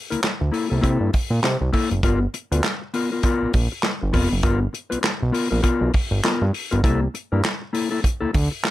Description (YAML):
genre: funk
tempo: 100 BPM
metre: 4/4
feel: swing 60% on 16ths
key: unclear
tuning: A4 = 439 Hz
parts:
  - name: mellow electric guitar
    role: accompaniment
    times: 0.1-8.7 s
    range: Bb3 to B4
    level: -23 LUFS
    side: left 3 dB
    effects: none
  - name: fat analog bass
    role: bass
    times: 0.1-8.5 s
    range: F1 to C3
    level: -21 LUFS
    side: right 1 dB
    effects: none
  - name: warm soul drum kit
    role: drums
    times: 0.1-8.7 s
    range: handclaps, hi-hat, kick drum, snare drum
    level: -22 LUFS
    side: equal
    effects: none
room: little or no reverb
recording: none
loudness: -19 LUFS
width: side -15 dB against mid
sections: 0.0-8.7 A section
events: none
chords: 0.0 C13; 2.0 G7#9; 6.8 C13